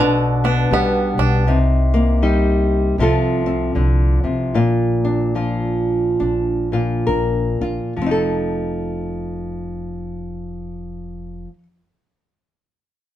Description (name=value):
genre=acoustic folk duo or small band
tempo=65-80 BPM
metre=4/4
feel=swing 61% on 8ths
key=F mixolydian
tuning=A4 = 439 Hz
part: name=nylon-string guitar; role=accompaniment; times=0.0-11.6 s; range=Bb2 to Bb4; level=-19 LUFS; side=left 1 dB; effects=none
part: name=bluegrass banjo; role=arpeggios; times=0.0-1.6 s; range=D3 to D4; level=-20 LUFS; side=right 4 dB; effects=none
part: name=upright bass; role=bass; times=0.0-11.4 s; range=F1 to C2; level=-22 LUFS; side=equal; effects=none
room=light reverb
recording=band playing live in one room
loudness=-16 LUFS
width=side -12 dB against mid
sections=0.0-8.0 A section; 8.0-11.7 B section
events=slowing down 1.5-8.0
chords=0.0 G/B; 1.5 Cm7; 3.0 F/C; 4.6 Bb; 8.0 F7